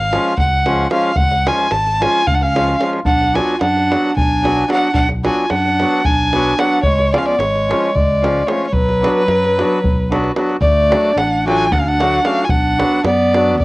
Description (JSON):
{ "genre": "balkan folk, Balkan wedding band", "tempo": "222 BPM (eighths)", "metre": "7/8", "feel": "straight", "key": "B dorian sharp4", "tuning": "A4 = 441 Hz", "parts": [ { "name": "bright violin", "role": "melody", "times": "0.0-13.6 s", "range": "B4 to A5", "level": "-16 LUFS", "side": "equal", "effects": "none" }, { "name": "fingered electric bass", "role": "bass", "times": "0.0-13.6 s", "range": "G#1 to F#2", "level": "-21 LUFS", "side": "equal", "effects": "none" }, { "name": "accordion", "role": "accompaniment", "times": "0.1-13.6 s", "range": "E#3 to F#4", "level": "-19 LUFS", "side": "equal", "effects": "none" }, { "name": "davul", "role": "percussion", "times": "0.1-13.6 s", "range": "none", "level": "-20 LUFS", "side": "equal", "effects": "none" }, { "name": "bright clarinet", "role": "second line", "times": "2.0-13.6 s", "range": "F#3 to E#4", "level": "-21 LUFS", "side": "right 2 dB", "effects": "none" } ], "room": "light reverb", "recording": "home recording on cassette", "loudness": "-13 LUFS", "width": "side -21 dB against mid", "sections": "0.0-10.6 A section; 10.6-13.6 B section", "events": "none", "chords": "0.0 C#; 3.0 Bm; 6.8 C#; 8.7 Bm; 10.6 D; 12.5 Bm" }